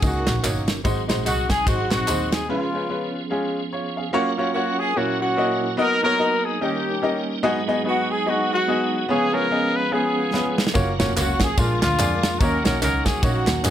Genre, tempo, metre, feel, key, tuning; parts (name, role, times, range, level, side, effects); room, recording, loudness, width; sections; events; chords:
uptempo gospel; 145 BPM; 4/4; swing 59% on 8ths; F# major; A4 = 441 Hz
mellow horn section; melody; 0.0-13.7 s; G#3 to B4; -23 LUFS; left 1 dB
clear baby grand piano; accompaniment; 0.0-13.7 s; G#2 to E#5; -24 LUFS; left 1 dB
tonewheel organ; sustained chords; 0.0-13.7 s; A#2 to A#4; -29 LUFS; right 4 dB; slow rotary speaker, chorus vibrato
warm double bass; bass; 0.0-2.4, 10.8-13.7 s; E#1 to F#2; -25 LUFS; equal
modern studio drum kit; drums; 0.0-2.4, 10.3-13.7 s; kick drum, ride cymbal, snare drum; -23 LUFS; equal
tambourine and handclaps; percussion; 0.0-2.4, 10.8-13.7 s; -32 LUFS; right 3 dB
studio reverb; -19 LUFS; side -10 dB against mid
0.0-4.1 A section; 4.1-13.7 A section
break 2.5-4.1; drum fill 10.3-10.8
0.0 D#m7; 0.8 G#7; 2.5 C#7; 4.1 F#maj7; 5.0 F#7/A#; 5.8 Bmaj7/F#; 6.6 D#7; 7.4 G#m7; 9.1 C#7; 10.8 F#maj7; 11.6 A#7; 12.4 D#m7